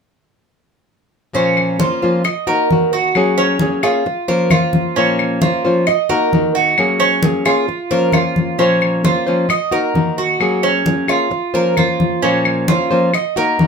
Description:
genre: latin, Cuban son and guajira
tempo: 132 BPM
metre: 4/4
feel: straight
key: Bb minor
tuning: A4 = 440 Hz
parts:
  - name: nylon-string guitar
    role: accompaniment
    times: 1.3-13.7 s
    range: Bb2 to C5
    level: -17 LUFS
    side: left 2 dB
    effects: none
  - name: Cuban tres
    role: arpeggios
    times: 1.3-13.7 s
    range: Db4 to Eb5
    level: -17 LUFS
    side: right 4 dB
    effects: none
  - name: congas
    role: percussion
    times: 1.4-13.7 s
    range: none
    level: -18 LUFS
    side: left 2 dB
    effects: none
  - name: claves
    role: percussion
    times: 1.6-13.4 s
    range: none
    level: -20 LUFS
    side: left 7 dB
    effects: none
room: moderate studio ambience, RT60 0.5 s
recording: minimal, uncompressed stereo recording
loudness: -13 LUFS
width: side -5 dB against mid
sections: 1.3-13.7 A section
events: none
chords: 1.3 Bbmadd9; 2.2 Ebm; 3.2 Gbadd9; 4.1 Bbmadd9; 5.9 Ebm; 6.8 Gbadd9; 7.7 Bbmadd9; 9.5 Ebm; 10.4 Gbadd9; 11.3 Bbmadd9; 13.1 Ebm

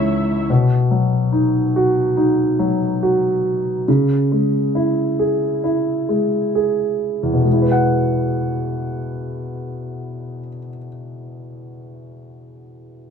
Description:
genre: pop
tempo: 64-72 BPM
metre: 4/4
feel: straight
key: E major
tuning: A4 = 441 Hz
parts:
  - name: dark grand piano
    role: accompaniment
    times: 0.0-13.1 s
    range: C#2 to F#5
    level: -17 LUFS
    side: equal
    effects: none
  - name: dark studio string section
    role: sustained chords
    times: 0.0-0.5 s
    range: G#3 to E5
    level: -25 LUFS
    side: right 3 dB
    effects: none
room: wet studio reverb, RT60 0.8 s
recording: band playing live in one room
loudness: -16 LUFS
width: side -6 dB against mid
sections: 0.0-7.5 A section; 7.5-11.2 B section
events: slowing down 0.5-7.5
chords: 0.5 B; 3.9 C#m; 7.5 Eadd9

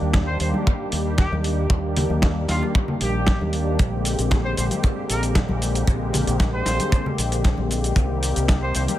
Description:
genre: nu-disco, nu disco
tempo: 115 BPM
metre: 4/4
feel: straight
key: unclear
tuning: A4 = 440 Hz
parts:
  - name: warm analog pad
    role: accompaniment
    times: 0.0-9.0 s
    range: D3 to G4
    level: -26 LUFS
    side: left 1 dB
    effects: chorus, sidechain pumping
  - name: fingered electric bass with an envelope filter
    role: bass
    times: 0.0-8.9 s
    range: Bb1 to Eb2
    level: -24 LUFS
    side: equal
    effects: none
  - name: dusty soul sampler-style drum kit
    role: drums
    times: 0.1-9.0 s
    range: hi-hat, shaker, snare drum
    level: -28 LUFS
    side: equal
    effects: small room ambience
  - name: kick drum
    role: drums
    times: 0.1-8.6 s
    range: none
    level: -20 LUFS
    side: equal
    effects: small room ambience
  - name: clear trumpet section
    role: melody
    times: 0.3-8.8 s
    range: F4 to C5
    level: -30 LUFS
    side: equal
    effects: vintage 12-bit sampler grit, digital delay
  - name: congas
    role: percussion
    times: 0.5-9.0 s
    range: none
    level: -29 LUFS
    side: left 2 dB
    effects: none
room: small room ambience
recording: none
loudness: -19 LUFS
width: side -13 dB against mid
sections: 0.0-9.0 A section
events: none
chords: 0.0 Ebmaj7; 3.8 Bb13; 8.0 Cm7

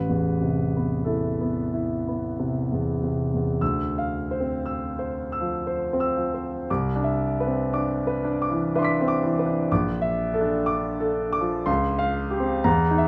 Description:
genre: classical, impressionist solo piano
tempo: 60 BPM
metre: 3/4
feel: uneven beats, rubato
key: unclear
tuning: A4 = 440 Hz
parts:
  - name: clear concert grand piano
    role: solo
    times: 0.0-13.1 s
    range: A1 to B6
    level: -25 LUFS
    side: equal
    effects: none
room: moderate large studio reverb, RT60 1.4 s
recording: none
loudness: -25 LUFS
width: mono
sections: 0.0-3.6 A section; 3.6-13.1 B section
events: none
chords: 0.0 Amadd9; 3.6 Dm9; 6.7 Cmaj9; 9.7 Bbmaj7#11; 11.7 C#maj7#11

